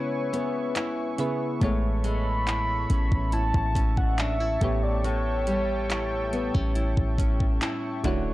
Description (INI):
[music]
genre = contemporary R&B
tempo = 70 BPM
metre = 4/4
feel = straight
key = A major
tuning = A4 = 440 Hz
[part]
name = mellow horn-like synth lead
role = melody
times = 0.0-7.6 s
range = C#5 to B5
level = -31 LUFS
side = equal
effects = chorus, analog delay
[part]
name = soft electric-piano-like synth keys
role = accompaniment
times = 0.0-8.3 s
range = A2 to C#5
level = -33 LUFS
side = right 1 dB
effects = chorus
[part]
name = chorused pulse-width pad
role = sustained chords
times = 0.0-8.3 s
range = A4 to C#6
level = -36 LUFS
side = left 1 dB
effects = none
[part]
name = nylon-string guitar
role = arpeggios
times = 0.0-8.3 s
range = A2 to E4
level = -31 LUFS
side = left 2 dB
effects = none
[part]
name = smooth R&B drum kit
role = drums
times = 0.3-8.2 s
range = handclaps, hi-hat, kick drum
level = -28 LUFS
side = equal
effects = none
[part]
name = clean 808-style bass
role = bass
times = 1.6-8.3 s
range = D1 to A1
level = -27 LUFS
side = equal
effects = none
[sound]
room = digital ambience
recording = dry, gritty hardware recording, transformer saturation, cassette tape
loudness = -23 LUFS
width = side -17 dB against mid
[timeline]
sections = 0.0-8.3 A section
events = break 0.0-1.6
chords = 0.0 C#m7; 1.6 Amaj7; 4.6 A7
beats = 0.76 | 1.61 2.47 3.33 4.19 | 5.04 5.90 6.76 7.62